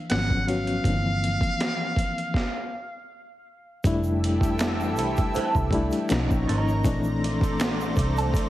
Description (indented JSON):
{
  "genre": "R&B, neo-soul",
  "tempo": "80 BPM",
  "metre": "4/4",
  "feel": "swing 55% on 16ths",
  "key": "F major",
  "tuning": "A4 = 440 Hz",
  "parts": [
    { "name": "bright reed electric piano", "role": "accompaniment", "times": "0.0-8.5 s", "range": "E3 to Gb4", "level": "-27 LUFS", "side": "left 3 dB", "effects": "fast tremolo" },
    { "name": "trumpet with metal mute", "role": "melody", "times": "0.1-3.1 s", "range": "F5 to Gb5", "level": "-30 LUFS", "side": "equal", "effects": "analog delay" },
    { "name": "vintage muted fingered electric bass", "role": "bass", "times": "0.1-8.3 s", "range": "F1 to C2", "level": "-27 LUFS", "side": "equal", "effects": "none" },
    { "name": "boom bap sampler-style drum kit", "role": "drums", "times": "0.1-8.5 s", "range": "finger snaps, hi-hat, kick drum, snare drum", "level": "-27 LUFS", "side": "equal", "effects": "none" },
    { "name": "lush unison pad", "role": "sustained chords", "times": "3.8-8.5 s", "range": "E3 to A#5", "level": "-31 LUFS", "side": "right 2 dB", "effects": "chorus" },
    { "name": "egg shaker and finger snaps", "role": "percussion", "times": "3.8-8.5 s", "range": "none", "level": "-42 LUFS", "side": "right 2 dB", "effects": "none" },
    { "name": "electric guitar through a small old amp", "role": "second line", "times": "5.0-8.3 s", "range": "F3 to A#4", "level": "-29 LUFS", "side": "right 4 dB", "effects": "wah, phaser" }
  ],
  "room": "light reverb",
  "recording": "heavily compressed radio sound",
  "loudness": "-22 LUFS",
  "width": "side -14 dB against mid",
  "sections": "0.0-3.8 A section; 3.8-8.5 B section",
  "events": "stop 2.3-3.8",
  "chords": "0.1 Abm7; 0.8 Gm7; 3.8 Fmaj9; 6.1 Bmaj9; 6.8 Bbmaj9"
}